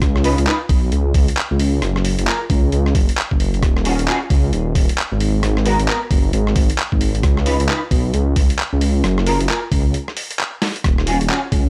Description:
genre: UK garage, two-step garage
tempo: 133 BPM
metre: 4/4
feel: swing 62% on 16ths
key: unclear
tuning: A4 = 442 Hz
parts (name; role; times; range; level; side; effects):
- dark detuned saw bass; bass; 0.0-11.7 s; Eb1 to Db2; -20 LUFS; equal; none
- boom bap sampler-style drum kit; drums; 0.0-11.6 s; handclaps, hi-hat, rim click, snare drum; -26 LUFS; equal; none
- electronic kick drum; drums; 0.0-11.6 s; none; -19 LUFS; equal; none
- mellow electric guitar; stabs; 0.2-11.4 s; Cb4 to Cb5; -25 LUFS; equal; ensemble chorus, low-pass filter, tape echo
room: little or no reverb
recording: dry, gritty hardware recording, vinyl crackle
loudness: -18 LUFS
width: mono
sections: 0.0-11.7 A section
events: break 9.9-10.8; drum fill 10.6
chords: 0.0 Db7(no3); 1.8 Gb5; 3.6 Eb7sus4; 5.2 Ab7(no3); 7.2 Db7(no3); 9.0 Gb5; 10.8 Ebm11

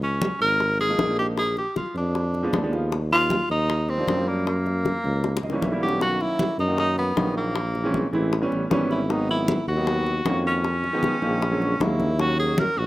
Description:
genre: Afro-Cuban jazz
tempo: 155 BPM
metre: 4/4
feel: straight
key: B major from 6.0 s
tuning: A4 = 439 Hz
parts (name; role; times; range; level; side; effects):
- warm tenor saxophone; melody; 0.0-12.9 s; Bb3 to Bb4; -24 LUFS; equal; none
- mellow tuba; bass; 0.0-12.9 s; Ab1 to F#2; -26 LUFS; equal; none
- congas; percussion; 0.0-12.9 s; none; -30 LUFS; equal; none
- bongos; percussion; 0.2-12.8 s; none; -31 LUFS; left 5 dB; none
- warm upright piano; accompaniment; 0.9-12.7 s; D3 to Gb5; -27 LUFS; right 1 dB; none
room: light reverb, small room ambience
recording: rough home demo mix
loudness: -21 LUFS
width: side -17 dB against mid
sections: 0.0-6.0 A section; 6.0-12.9 B section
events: drum fill 5.2-6.0; upright piano fill 5.2-6.0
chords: 0.0 Db69; 1.4 Bb7b9; 2.9 Ebmaj7; 4.5 Gb7b9; 6.0 Bmaj9; 7.6 A#m7b5; 8.3 A9; 9.1 G#m9; 10.6 Fm7b5; 11.4 A#7alt; 12.2 D#m7

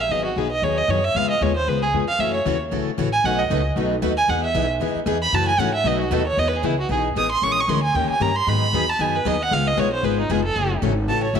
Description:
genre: acoustic string swing (jazz manouche)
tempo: 230 BPM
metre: 4/4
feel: swing 55% on 8ths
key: E major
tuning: A4 = 440 Hz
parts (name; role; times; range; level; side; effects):
- rich violin; melody; 0.0-11.4 s; D#4 to D#6; -21 LUFS; right 3 dB; slapback echo
- upright bass; bass; 0.0-11.4 s; E#1 to G#2; -26 LUFS; equal; none
- picked plugged-in steel-string acoustic guitar; accompaniment; 0.1-11.4 s; B2 to A#4; -25 LUFS; left 11 dB; none
- picked steel-string acoustic guitar; accompaniment; 2.2-11.4 s; B2 to C#5; -29 LUFS; right 12 dB; none
room: moderate echo chamber reverb, RT60 2.5 s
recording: 1960s-style stereo with parts hard left and right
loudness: -18 LUFS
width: side -7 dB against mid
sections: 0.0-6.4 A section; 6.4-11.4 A section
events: violin solo 0.0-11.4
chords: 0.1 G#m7; 1.2 C#7; 2.2 F#m7; 3.2 B7; 4.3 Emaj7; 5.3 F#m7; 5.9 B7; 6.4 Emaj7; 7.4 A#m7b5; 7.9 D#7; 8.5 G#m7; 9.5 C#7; 10.6 F#m7

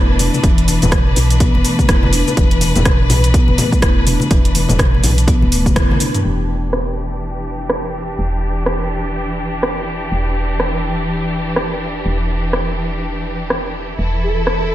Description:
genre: afro house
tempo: 124 BPM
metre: 4/4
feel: swing 59% on 16ths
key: E minor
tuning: A4 = 440 Hz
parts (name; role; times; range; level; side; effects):
- clear symphonic string section; sustained chords; 0.0-14.7 s; E3 to B4; -22 LUFS; left 1 dB; sidechain pumping, low-pass filter
- marimba with soft mallets; arpeggios; 0.0-6.1 s; B2 to E4; -20 LUFS; left 2 dB; sidechain pumping, ping-pong delay
- woody FM bass; bass; 0.0-14.7 s; D1 to B1; -20 LUFS; equal; tube saturation, sidechain pumping
- house drum kit; drums; 0.2-14.6 s; hi-hat, rim click, shaker, toms; -20 LUFS; right 1 dB; overdrive, low-pass filter on hats, low-pass filter on perc, low-pass filter on snare, low-pass filter on toms, low-pass filter on room
- congas; percussion; 0.3-6.2 s; none; -22 LUFS; left 2 dB; none
- electronic kick drum; drums; 0.4-5.9 s; none; -14 LUFS; equal; overdrive
- expressive portamento lead; melody; 14.2-14.7 s; A4; -20 LUFS; right 1 dB; ensemble chorus
room: light reverb, digital ambience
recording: none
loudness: -14 LUFS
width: side -14 dB against mid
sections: 0.0-6.2 A section; 6.2-14.7 B section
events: filter sweep on marimba 0.0-6.2; drum fill 5.8-6.2; band accent 5.8; filter sweep on string section 6.2-14.7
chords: 0.0 E7(no3); 6.2 Em7

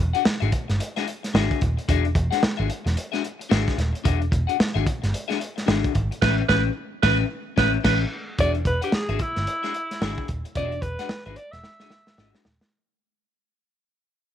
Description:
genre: funk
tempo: 111 BPM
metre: 4/4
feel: swing 60% on 16ths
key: E mixolydian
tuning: A4 = 440 Hz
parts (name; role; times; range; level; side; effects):
- vintage muted picked electric bass; bass; 0.0-12.6 s; D#1 to A1; -24 LUFS; right 1 dB; none
- clean electric guitar; accompaniment; 0.1-12.7 s; C#4 to F#5; -27 LUFS; left 15 dB; wide subtle chorus
- crunchy breakbeat drum kit; drums; 0.1-12.7 s; crash cymbal, hi-hat, kick drum, snare drum; -25 LUFS; right 1 dB; none
- raspy tenor saxophone; second line; 6.2-8.0 s; B4; -24 LUFS; right 15 dB; none
- bright alto saxophone; melody; 8.4-12.3 s; E4 to E5; -28 LUFS; right 1 dB; none
room: small room reverb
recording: 1960s-style stereo with parts hard left and right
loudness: -21 LUFS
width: side -10 dB against mid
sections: 0.0-8.4 A section; 8.4-12.7 B section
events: band accent 6.2-8.4; fade-out 8.4-12.7; drum fill 11.6-12.7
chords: 0.0 E9; 6.2 A9; 8.4 E9

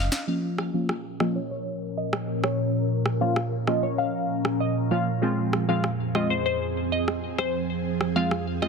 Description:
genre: dancehall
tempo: 97 BPM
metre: 4/4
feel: straight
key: Bb minor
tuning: A4 = 439 Hz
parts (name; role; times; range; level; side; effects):
- glassy wavetable pluck; melody; 0.0-8.7 s; C5 to F5; -30 LUFS; left 2 dB; chorus, low-pass filter, ping-pong delay
- electronic snare drum, shaker and rim click; drums; 0.1-8.7 s; none; -29 LUFS; right 1 dB; none
- synth brass stab; accompaniment; 0.3-8.7 s; F3 to F4; -27 LUFS; equal; chorus, low-pass filter
- ethereal airy pad; sustained chords; 1.1-8.7 s; F2 to Bb4; -27 LUFS; right 1 dB; ensemble chorus, built-in reverb, phaser, low-pass filter
room: moderate plate reverb, RT60 1.8 s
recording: dense, heavily limited modern master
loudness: -23 LUFS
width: side -4 dB against mid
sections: 0.3-8.7 A section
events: drum fill 0.0; filter sweep 0.3-8.7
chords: 0.3 Bbm; 5.2 Fm

